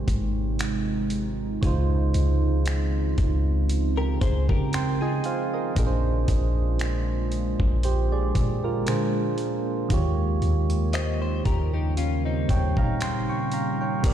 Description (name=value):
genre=contemporary R&B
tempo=58 BPM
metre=4/4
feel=swing 54% on 16ths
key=unclear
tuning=A4 = 440 Hz
part: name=soft electric-piano-like synth keys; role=accompaniment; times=0.0-14.1 s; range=Ab2 to Db6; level=-29 LUFS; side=right 4 dB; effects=chorus
part: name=deep dark ambient pad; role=sustained chords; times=0.0-14.1 s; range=C3 to F4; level=-30 LUFS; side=right 2 dB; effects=chorus, built-in reverb
part: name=clean 808-style bass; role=bass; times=0.0-14.1 s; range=Ab1 to D3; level=-25 LUFS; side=equal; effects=none
part: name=dusty soul sampler-style drum kit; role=drums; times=0.1-14.1 s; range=crash cymbal, finger snaps, hi-hat, kick drum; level=-28 LUFS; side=equal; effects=none
part: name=direct-recorded clean electric guitar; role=arpeggios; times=4.0-13.8 s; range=C4 to Eb5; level=-33 LUFS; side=left 6 dB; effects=analog chorus, ping-pong delay
room=little or no reverb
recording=played on a big sound system in a bare room, large studio reverb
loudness=-22 LUFS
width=side -10 dB against mid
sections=0.0-14.0 A section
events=none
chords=0.0 Abmaj7; 1.6 Dbmaj9; 5.8 Bb7; 9.9 Eb7